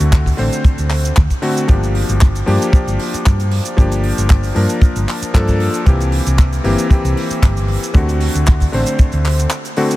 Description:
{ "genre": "nu-disco, nu disco", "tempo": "115 BPM", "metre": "4/4", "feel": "swing 53% on 16ths", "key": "G dorian", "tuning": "A4 = 442 Hz", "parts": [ { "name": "clear electric grand piano", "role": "accompaniment", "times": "0.0-10.0 s", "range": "D3 to C5", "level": "-19 LUFS", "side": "left 1 dB", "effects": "sidechain pumping, ping-pong delay" }, { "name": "hollow-body short-scale fingered electric bass", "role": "bass", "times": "0.0-9.5 s", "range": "G1 to G2", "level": "-16 LUFS", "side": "equal", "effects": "none" }, { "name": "tight funk drum kit", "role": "drums", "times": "0.0-10.0 s", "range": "handclaps, hi-hat, shaker", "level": "-25 LUFS", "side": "right 1 dB", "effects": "none" }, { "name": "kick drum", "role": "drums", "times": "0.1-9.1 s", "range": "none", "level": "-11 LUFS", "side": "equal", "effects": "none" } ], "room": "light reverb", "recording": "none", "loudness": "-12 LUFS", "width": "side -17 dB against mid", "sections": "0.0-10.0 A section", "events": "none", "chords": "0.0 D7; 1.7 Gm7; 5.9 C7; 7.9 D7" }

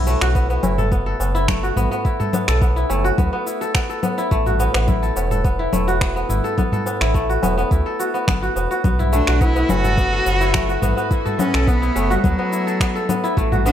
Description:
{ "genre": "organic downtempo", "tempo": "106 BPM", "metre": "4/4", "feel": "straight", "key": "unclear", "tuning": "A4 = 440 Hz", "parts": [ { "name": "kora", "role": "arpeggios", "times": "0.0-13.7 s", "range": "A3 to A4", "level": "-21 LUFS", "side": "left 1 dB", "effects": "tape echo" }, { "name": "warm sub bass", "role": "bass", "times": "0.0-13.7 s", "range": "E1 to D2", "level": "-21 LUFS", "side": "equal", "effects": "sidechain pumping" }, { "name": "electronic cabasa, finger snaps and congas", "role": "drums", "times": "0.1-13.7 s", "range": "none", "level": "-24 LUFS", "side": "left 3 dB", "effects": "overdrive" }, { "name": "tabla", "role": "percussion", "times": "0.1-13.7 s", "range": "none", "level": "-28 LUFS", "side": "right 2 dB", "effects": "none" }, { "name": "electronic kick drum", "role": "drums", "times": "0.4-13.5 s", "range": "none", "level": "-20 LUFS", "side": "equal", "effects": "overdrive" }, { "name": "clear cello", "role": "melody", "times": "9.1-13.7 s", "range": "F#3 to F#4", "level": "-22 LUFS", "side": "equal", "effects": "tape echo" } ], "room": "light reverb, studio ambience", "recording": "none", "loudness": "-16 LUFS", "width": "side -10 dB against mid", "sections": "0.0-13.7 A section", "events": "none", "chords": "0.0 B7(no3); 4.3 A5; 8.8 B7(no3)" }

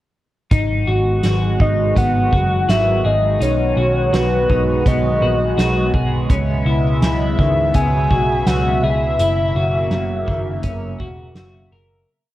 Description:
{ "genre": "dream pop", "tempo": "83 BPM", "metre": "4/4", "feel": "straight", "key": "G# minor", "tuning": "A4 = 440 Hz", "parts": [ { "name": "phased analog pad", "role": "sustained chords", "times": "0.5-12.1 s", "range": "B2 to E5", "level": "-23 LUFS", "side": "right 2 dB", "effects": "phaser, chorus" }, { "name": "electric guitar at the edge of break-up", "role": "arpeggios", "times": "0.5-12.1 s", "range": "D#3 to A#4", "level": "-23 LUFS", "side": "left 2 dB", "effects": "wide subtle chorus, digital delay" }, { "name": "vintage muted picked electric bass", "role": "bass", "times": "0.5-12.0 s", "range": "E1 to C#2", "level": "-20 LUFS", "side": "equal", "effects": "none" }, { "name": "soft-mallet drum kit", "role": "drums", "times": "0.5-11.5 s", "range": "hi-hat, kick drum, snare drum", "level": "-22 LUFS", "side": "equal", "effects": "none" }, { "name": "soft octave-layered synth lead", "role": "melody", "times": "1.6-11.4 s", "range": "B4 to G#5", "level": "-20 LUFS", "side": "left 1 dB", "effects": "chorus, digital delay" } ], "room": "light reverb", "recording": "worn, warbling old tape, cassette tape, warbly pitch drift", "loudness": "-14 LUFS", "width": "side -15 dB against mid", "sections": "0.5-12.1 verse", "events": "fade-out 9.2-12.1", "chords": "0.5 G#m7; 3.4 B6; 6.3 C#m7; 9.2 F#7" }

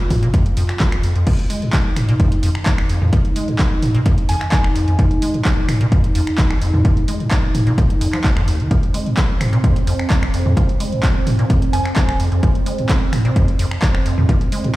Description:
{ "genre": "acid house", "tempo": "129 BPM", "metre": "4/4", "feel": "straight", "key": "F minor", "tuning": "A4 = 444 Hz", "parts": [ { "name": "dark analog pad", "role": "sustained chords", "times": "0.0-14.8 s", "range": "C4 to F4", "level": "-25 LUFS", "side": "right 1 dB", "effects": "chorus, sidechain pumping" }, { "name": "electronic kick drum", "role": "drums", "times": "0.1-14.4 s", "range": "none", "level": "-17 LUFS", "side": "equal", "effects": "overdrive" }, { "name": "punchy analog drum machine", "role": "drums", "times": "0.1-14.7 s", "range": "crash cymbal, finger snaps, handclaps, hi-hat, toms", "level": "-23 LUFS", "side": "equal", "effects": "overdrive" }, { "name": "acid bass, square", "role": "riff", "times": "0.2-14.7 s", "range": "F1 to Ab3", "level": "-20 LUFS", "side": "equal", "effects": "lush chorus, tape echo" }, { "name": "soft synth bell", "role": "melody", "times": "4.3-4.9, 11.7-12.4 s", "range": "Ab5", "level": "-27 LUFS", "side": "equal", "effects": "chorus, digital delay" } ], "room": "light reverb, digital ambience", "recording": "played on a big sound system in a bare room, large studio reverb", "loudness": "-14 LUFS", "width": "side -18 dB against mid", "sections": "0.0-14.8 A section", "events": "none", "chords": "0.0 Fm7" }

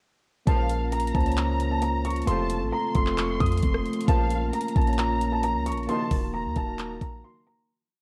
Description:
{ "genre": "hip hop, trap", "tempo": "133 BPM", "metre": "4/4", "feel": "half-time", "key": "Bb harmonic minor", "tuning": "A4 = 440 Hz", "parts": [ { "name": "warm concert grand piano", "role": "melody", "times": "0.5-7.6 s", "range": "A5 to Eb6", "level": "-32 LUFS", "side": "equal", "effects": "none" }, { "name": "warm studio violin section", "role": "second line", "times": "0.5-7.2 s", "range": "F5 to C6", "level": "-39 LUFS", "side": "equal", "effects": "tape echo" }, { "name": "mellow tine electric piano", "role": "accompaniment", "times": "0.5-7.7 s", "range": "A3 to Db5", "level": "-33 LUFS", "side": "equal", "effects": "none" }, { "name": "ethereal airy pad", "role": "sustained chords", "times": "1.3-7.7 s", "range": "C3 to Gb4", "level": "-38 LUFS", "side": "equal", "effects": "ensemble chorus, built-in reverb" }, { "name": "dark brass ensemble", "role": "stabs", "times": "0.5-6.2 s", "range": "Bb1 to F3", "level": "-38 LUFS", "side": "equal", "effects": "none" }, { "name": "clean 808-style bass", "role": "bass", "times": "0.5-7.2 s", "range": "Eb1 to F2", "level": "-30 LUFS", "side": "equal", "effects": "tube saturation" }, { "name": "trap drum kit", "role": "drums", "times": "0.5-7.1 s", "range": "handclaps, hi-hat, kick drum, rim click", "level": "-29 LUFS", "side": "equal", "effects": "none" } ], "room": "light reverb", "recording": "worn, warbling old tape, cassette tape, warbly pitch drift", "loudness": "-25 LUFS", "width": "mono", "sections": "0.5-7.7 hook", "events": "fade-out 5.9-7.7; break 7.2-7.7", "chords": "0.5 Bbm; 2.3 F; 4.1 Bbm; 5.9 Ebm" }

